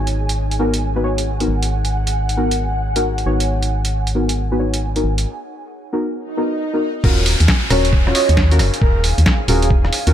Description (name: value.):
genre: UK garage, two-step garage.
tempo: 135 BPM.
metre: 4/4.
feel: swing 64% on 16ths.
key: Eb minor.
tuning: A4 = 439 Hz.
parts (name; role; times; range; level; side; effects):
airy breathy pad; sustained chords; 0.0-10.1 s; Ab5; -32 LUFS; right 2 dB; chorus, sidechain pumping.
deep mellow chord stab; stabs; 0.0-10.1 s; Cb4 to Eb5; -22 LUFS; left 2 dB; chorus, dub echo.
organ-like FM bass; bass; 0.0-10.1 s; Eb1 to Eb2; -18 LUFS; equal; none.
ethereal airy pad; texture; 0.0-10.1 s; Eb4 to Gb5; -28 LUFS; right 1 dB; ensemble chorus, built-in reverb, sidechain pumping.
boom bap sampler-style drum kit; drums; 0.1-10.1 s; crash cymbal, hi-hat, rim click, snare drum; -21 LUFS; right 1 dB; none.
swell and downlifter; sound effects; 6.2-10.1 s; none; -26 LUFS; right 1 dB; none.
electronic kick drum; drums; 7.0-9.8 s; none; -17 LUFS; equal; none.
breathy flute-like synth lead; melody; 7.7-9.7 s; Ab4 to Db5; -22 LUFS; right 2 dB; wide subtle chorus, dub echo.
room: little or no reverb.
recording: none.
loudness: -15 LUFS.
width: side -10 dB against mid.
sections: 0.0-7.0 A section; 7.0-10.1 B section.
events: break 5.3-7.0; swell 6.2-7.0; drop 7.0-10.1.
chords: 0.0 Abm7; 7.0 Ebm7.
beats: 0.37 0.82 1.26 | 1.71 2.15 2.60 3.04 | 3.48 3.93 4.37 4.82 | 5.26 5.71 6.15 6.59 | 7.04 7.48 7.93 8.37 | 8.82 9.26 9.71.